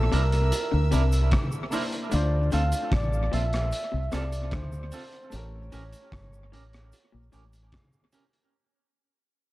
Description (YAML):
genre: lovers rock reggae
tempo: 75 BPM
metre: 4/4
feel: straight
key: unclear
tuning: A4 = 440 Hz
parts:
  - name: mellow flugelhorn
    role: melody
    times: 0.0-7.7 s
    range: A4 to F5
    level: -33 LUFS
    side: right 1 dB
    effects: tape echo
  - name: warm studio violin section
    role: second line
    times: 0.0-2.1 s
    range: E5 to E6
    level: -39 LUFS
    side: right 2 dB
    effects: none
  - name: clear grand piano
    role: accompaniment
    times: 0.0-8.5 s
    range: A3 to C5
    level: -37 LUFS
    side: left 1 dB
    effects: none
  - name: deep dub fingered electric bass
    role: bass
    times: 0.0-7.7 s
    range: G1 to D2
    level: -25 LUFS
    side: equal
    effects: none
  - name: electric guitar through a small old amp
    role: riff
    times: 0.1-7.6 s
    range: G2 to D3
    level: -36 LUFS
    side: left 6 dB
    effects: tape echo
  - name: twangy electric guitar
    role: stabs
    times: 0.1-8.4 s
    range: C4 to Bb4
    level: -36 LUFS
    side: right 4 dB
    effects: spring reverb, tape echo
  - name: crunchy breakbeat drum kit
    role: drums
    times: 0.1-8.5 s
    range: hi-hat, kick drum, rim click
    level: -30 LUFS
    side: equal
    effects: tape echo
  - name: cabasa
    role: percussion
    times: 0.5-8.3 s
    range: none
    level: -47 LUFS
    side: right 7 dB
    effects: tape echo
room: studio ambience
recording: dark, warm production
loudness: -23 LUFS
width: side -17 dB against mid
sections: 0.0-8.5 A section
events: fade-out 0.0-8.5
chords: 0.0 C9; 2.1 Dm7; 5.3 A7b9